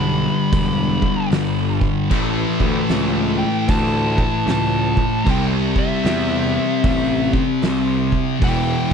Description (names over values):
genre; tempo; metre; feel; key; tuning
stoner and doom metal; 76 BPM; 4/4; swing 62% on 8ths; unclear; A4 = 440 Hz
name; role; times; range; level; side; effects
fuzz lead guitar; melody; 0.0-8.9 s; E5 to B5; -26 LUFS; right 1 dB; distortion, tape echo
distorted electric guitar; riff; 0.0-8.9 s; E2 to C4; -25 LUFS; equal; overdrive
thick fuzz guitar; riff; 0.0-8.9 s; E2 to C4; -22 LUFS; left 12 dB; distortion
thick fuzz guitar; riff; 0.0-8.9 s; E2 to C4; -24 LUFS; right 11 dB; distortion
fuzz picked electric bass; bass; 0.0-8.9 s; E1 to E2; -24 LUFS; right 1 dB; overdrive, tube saturation
oversized low-tuned drum kit; drums; 0.5-8.9 s; crash cymbal, hi-hat, kick drum, snare drum; -22 LUFS; right 1 dB; none
room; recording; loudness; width
studio ambience; dry, close 1970s-style studio recording; -16 LUFS; side -6 dB against mid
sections
0.0-8.9 A section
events
none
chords
0.0 G; 2.1 A; 5.3 C; 8.4 Em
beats
0.52 1.31 | 2.10 2.90 3.69 4.48 | 5.27 6.06 6.84 7.63 | 8.43